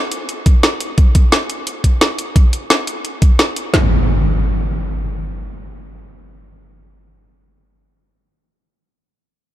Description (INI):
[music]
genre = liquid drum and bass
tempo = 174 BPM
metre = 4/4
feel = straight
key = none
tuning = none
[part]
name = drum and bass drum kit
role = drums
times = 0.1-3.6 s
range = hi-hat, snare drum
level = -18 LUFS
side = equal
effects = overdrive, small room ambience
[part]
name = drum and bass drum kit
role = drums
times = 0.5-3.8 s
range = kick drum, snare drum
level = -10 LUFS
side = equal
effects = overdrive, small room ambience
[part]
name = impact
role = sound effects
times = 3.7-7.8 s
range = none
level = -17 LUFS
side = equal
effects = none
[sound]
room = light reverb, digital ambience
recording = dark, warm production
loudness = -13 LUFS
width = side -13 dB against mid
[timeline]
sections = 0.0-3.7 A section; 3.7-6.5 B section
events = none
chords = none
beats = 0.29 0.63 | 0.98 1.32 1.67 2.01 | 2.36 2.70 3.05 3.39 | 3.74 4.08 4.42 4.77 | 5.12 5.46 5.80 6.15